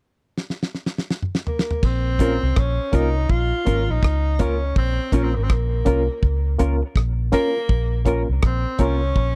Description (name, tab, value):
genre	roots reggae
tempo	82 BPM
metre	4/4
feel	swing 61% on 16ths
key	Bb minor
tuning	A4 = 440 Hz
part	damped 70s drum kit	drums	0.4-9.4 s	crash cymbal, hi-hat, kick drum, rim click, snare drum, toms	-23 LUFS	equal	none
part	warm tenor saxophone	melody	1.5-9.4 s	Bb3 to F4	-28 LUFS	equal	dub echo
part	vintage muted fingered electric bass	bass	1.8-9.4 s	Ab1 to Db2	-24 LUFS	equal	none
part	mellow electric guitar	accompaniment	2.2-9.0 s	Db4 to Bb4	-29 LUFS	equal	analog chorus, dub echo
part	barky reed electric piano	stabs	2.2-9.0 s	Bb3 to Bb4	-26 LUFS	equal	overdrive, fast tremolo
room	little or no reverb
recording	dry, close 1970s-style studio recording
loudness	-21 LUFS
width	mono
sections	0.0-1.8 A section; 1.8-9.4 B section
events	drum fill 0.4-1.8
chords	0.0 N.C.; 1.8 Bbm